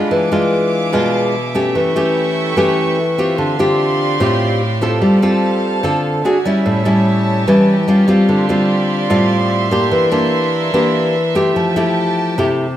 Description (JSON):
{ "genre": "bossa nova", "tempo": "147 BPM", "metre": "4/4", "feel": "straight", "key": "D minor", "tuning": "A4 = 439 Hz", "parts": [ { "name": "nylon-string guitar", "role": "accompaniment", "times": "0.0-12.8 s", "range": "A2 to A4", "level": "-13 LUFS", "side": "equal", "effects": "none" }, { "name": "warm studio violin section", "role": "sustained chords", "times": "0.0-12.8 s", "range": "E4 to D6", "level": "-21 LUFS", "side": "right 2 dB", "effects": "none" } ], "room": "moderate large studio reverb, RT60 1.4 s", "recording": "none", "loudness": "-13 LUFS", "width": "side -12 dB against mid", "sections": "0.0-12.8 A section", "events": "none", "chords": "0.1 E7b9; 1.8 A7/E; 3.4 Dm11; 5.0 G9sus4; 6.2 E9; 6.7 A7; 7.9 A7b13; 8.3 Dm11; 9.9 C9/E; 11.6 Fmaj9" }